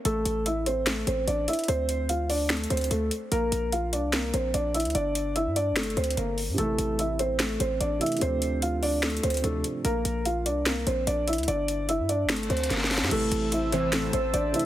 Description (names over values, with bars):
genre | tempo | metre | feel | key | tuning
hip hop, trap | 147 BPM | 4/4 | half-time | A phrygian | A4 = 438 Hz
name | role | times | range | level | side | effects
felt-muted upright piano | melody | 0.1-14.7 s | A3 to F5 | -27 LUFS | equal | low-pass filter
hard-hitting 808-style bass | bass | 0.1-14.5 s | G1 to G2 | -30 LUFS | equal | none
trap drum kit | drums | 0.1-14.6 s | crash cymbal, finger snaps, hi-hat, snare drum | -29 LUFS | equal | none
dark baby grand piano | accompaniment | 6.5-9.9, 13.1-14.7 s | C3 to E4 | -33 LUFS | right 3 dB | low-pass filter
reverse cymbal | sound effects | 12.5-13.1 s | none | -35 LUFS | left 2 dB | none
warbly tape-like pad | sustained chords | 13.4-14.7 s | C5 to E6 | -34 LUFS | equal | chorus, built-in reverb
chorused polysynth | stabs | 13.1-14.1 s | C2 to E3 | -33 LUFS | right 2 dB | none
room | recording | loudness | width
light reverb | heavily compressed radio sound, multiband compression | -24 LUFS | side -13 dB against mid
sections
0.0-13.1 A section; 13.1-14.7 B section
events
break 0.1-6.6; reverse cymbal 12.5-13.1; drum fill 12.7-13.1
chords
0.1 Am; 1.7 Dm7; 3.3 Bb; 4.9 Gmadd9; 6.6 Am; 8.2 Dm7; 9.8 Bb; 11.5 Gmadd9; 13.1 Am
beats
| 0.05 0.46 0.87 1.27 | 1.68 2.09 2.50 2.91 | 3.32 3.72 4.13 4.54 | 4.95 5.36 5.76 6.17 | 6.58 6.99 7.40 7.81 | 8.21 8.62 9.03 9.44 | 9.85 10.26 10.66 11.07 | 11.48 11.89 12.30 12.70 | 13.11 13.52 13.93 14.34